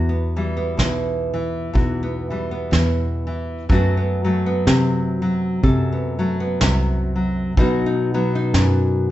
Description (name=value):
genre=acoustic folk duo or small band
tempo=62 BPM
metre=4/4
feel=swing 57% on 8ths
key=E harmonic minor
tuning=A4 = 441 Hz
part: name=nylon-string guitar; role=accompaniment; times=0.0-9.1 s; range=E2 to A4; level=-21 LUFS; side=equal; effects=none
part: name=fingered electric bass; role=bass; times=0.0-9.1 s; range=B1 to C3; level=-21 LUFS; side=equal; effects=none
part: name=soft brush drum kit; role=drums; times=0.8-8.8 s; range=kick drum, snare drum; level=-21 LUFS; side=equal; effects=none
room=moderate large studio reverb, RT60 0.8 s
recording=band playing live in one room, nothing above 8.0 kHz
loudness=-18 LUFS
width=side -14 dB against mid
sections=0.0-9.1 A section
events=none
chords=0.0 Emadd9; 3.7 F#dim; 7.6 B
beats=0.78 1.75 2.72 | 3.69 4.66 5.63 6.60 | 7.57 8.54